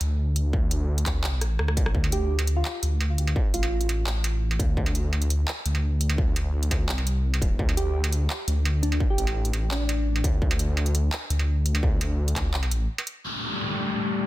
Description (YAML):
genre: half-time drum and bass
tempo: 170 BPM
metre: 4/4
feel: half-time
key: D minor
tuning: A4 = 438 Hz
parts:
  - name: dark detuned saw bass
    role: bass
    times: 0.0-12.9 s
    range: Eb1 to D2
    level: -24 LUFS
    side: equal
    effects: none
  - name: industrial drum kit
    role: drums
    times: 0.0-13.1 s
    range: handclaps, hi-hat, rim click, struck metal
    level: -31 LUFS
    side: right 1 dB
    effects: low-pass filter on hats, low-pass filter on snare, low-pass filter on perc
  - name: electronic kick drum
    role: drums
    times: 0.5-12.4 s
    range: none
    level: -26 LUFS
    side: equal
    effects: distortion
  - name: soft struck synth lead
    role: melody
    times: 2.1-4.0, 7.8-10.2 s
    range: D4 to G4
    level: -33 LUFS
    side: right 1 dB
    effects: chorus, dub echo
  - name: dark analog pad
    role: sustained chords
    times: 13.3-14.3 s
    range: A3 to A5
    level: -30 LUFS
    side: left 4 dB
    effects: chorus, sidechain pumping
  - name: downlifter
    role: sound effects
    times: 13.2-14.3 s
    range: none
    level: -28 LUFS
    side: left 1 dB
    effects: none
  - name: metallic inharmonic drone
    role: texture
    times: 13.4-14.3 s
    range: G3 to G4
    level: -32 LUFS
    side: left 2 dB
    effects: chorus, built-in reverb
room: digital ambience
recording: dense, heavily limited modern master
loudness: -22 LUFS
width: side -16 dB against mid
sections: 0.0-13.2 A section; 13.2-14.3 B section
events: drum fill 1.4-1.9; break 12.9-13.2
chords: 0.0 D5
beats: 0.19 | 0.54 0.89 1.24 1.60 | 1.95 2.30 2.66 3.01 | 3.36 3.71 4.07 4.42 | 4.77 5.13 5.48 5.83 | 6.19 6.54 6.89 7.24 | 7.60 7.95 8.30 8.66 | 9.01 9.36 9.71 10.07 | 10.42 10.77 11.13 11.48 | 11.83 12.19 12.54 12.89 | 13.24 13.60 13.95